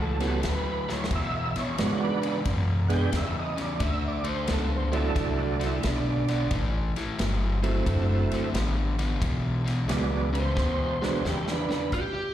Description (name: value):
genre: electric blues shuffle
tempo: 89 BPM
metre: 4/4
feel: swing 66% on 8ths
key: unclear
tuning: A4 = 440 Hz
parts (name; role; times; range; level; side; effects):
- tonewheel organ; accompaniment; 0.0-11.9 s; F#3 to G5; -30 LUFS; right 5 dB; slow rotary speaker, chorus vibrato, plate reverb, slapback echo
- overdriven semi-hollow guitar; riff; 0.0-12.2 s; E2 to B3; -30 LUFS; left 3 dB; none
- upright bass; bass; 0.0-12.3 s; F#1 to A2; -28 LUFS; equal; none
- natural country drum kit; drums; 0.2-12.1 s; hi-hat, kick drum, ride cymbal, snare drum; -34 LUFS; equal; none
- lead guitar through a small cranked amp; melody; 11.9-12.3 s; G4; -29 LUFS; right 1 dB; overdrive, slapback echo, plate reverb
room: light reverb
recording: live gig heard through the venue's PA, recital hall reverb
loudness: -24 LUFS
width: side -11 dB against mid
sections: 0.0-11.9 A section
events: drum fill 0.8-1.1, 10.6-11.9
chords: 0.0 A7; 1.1 E7; 3.8 D7; 6.5 A5; 7.9 D7; 9.2 E7